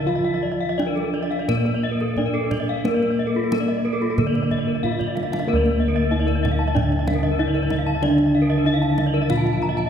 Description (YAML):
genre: Balinese gamelan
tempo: 84-94 BPM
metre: 4/4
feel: straight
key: D pelog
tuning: A4 = 440 Hz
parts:
  - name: gamelan-type bronze metallophone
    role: melody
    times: 0.0-9.9 s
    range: Bb3 to F4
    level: -25 LUFS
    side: equal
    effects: none
  - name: gamelan-type bronze metallophone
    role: accompaniment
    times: 0.0-9.9 s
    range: D3 to Bb3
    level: -28 LUFS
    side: equal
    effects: none
  - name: gamelan-type bronze metallophone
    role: arpeggios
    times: 0.0-9.9 s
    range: A4 to A5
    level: -29 LUFS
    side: right 4 dB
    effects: none
  - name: gamelan-type bossed gongs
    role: bass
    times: 0.0-9.9 s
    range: D2 to Bb4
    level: -24 LUFS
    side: equal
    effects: none
  - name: gamelan-type bronze metallophone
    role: arpeggios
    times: 0.1-9.9 s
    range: F4 to Bb5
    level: -27 LUFS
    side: left 5 dB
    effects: none
  - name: kendang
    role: percussion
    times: 0.8-9.9 s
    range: none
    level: -29 LUFS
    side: right 2 dB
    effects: none
room: wet cathedral reverb, RT60 4.6 s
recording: recorded in a church or concert hall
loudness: -19 LUFS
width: side -8 dB against mid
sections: 0.0-5.5 A section; 5.5-9.9 B section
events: drum fill 4.8-5.5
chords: none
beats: | 0.07 0.78 1.48 2.17 | 2.85 3.51 4.17 4.83 | 5.47 6.11 6.74 7.38 | 8.02 8.66 9.29